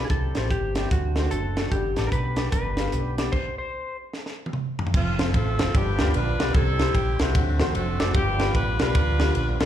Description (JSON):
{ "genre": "uptempo gospel", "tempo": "149 BPM", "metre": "4/4", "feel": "swing 64% on 8ths", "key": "unclear", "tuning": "A4 = 440 Hz", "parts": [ { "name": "electric slide guitar", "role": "melody", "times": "0.0-4.0 s", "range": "F#4 to C5", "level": "-31 LUFS", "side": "left 1 dB", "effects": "slapback echo" }, { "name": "warm upright piano", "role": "accompaniment", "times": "0.0-9.7 s", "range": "G2 to F5", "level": "-30 LUFS", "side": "left 6 dB", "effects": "slapback echo" }, { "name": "tonewheel organ", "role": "sustained chords", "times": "0.0-9.7 s", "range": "D3 to G4", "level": "-35 LUFS", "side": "right 4 dB", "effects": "slow rotary speaker" }, { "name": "fingered electric bass", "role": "bass", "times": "0.0-9.7 s", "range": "F1 to E2", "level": "-25 LUFS", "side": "equal", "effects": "none" }, { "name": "tight funk drum kit", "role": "drums", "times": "0.1-9.7 s", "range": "crash cymbal, hi-hat, kick drum, ride cymbal, snare drum, toms", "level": "-26 LUFS", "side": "right 1 dB", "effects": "none" }, { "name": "bright saxophone section", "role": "melody", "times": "5.0-9.6 s", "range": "A3 to B4", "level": "-28 LUFS", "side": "equal", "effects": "slapback echo" } ], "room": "small room ambience", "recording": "live gig heard through the venue's PA, club reverb", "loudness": "-21 LUFS", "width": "side -11 dB against mid", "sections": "0.0-4.9 A section; 4.9-9.7 B section", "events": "stop 3.3-4.9; drum fill 4.1-4.9", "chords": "0.1 C; 0.9 D7; 1.7 G; 3.3 N.C.; 4.9 F; 5.7 G7; 6.5 C; 7.3 D7; 8.2 G7" }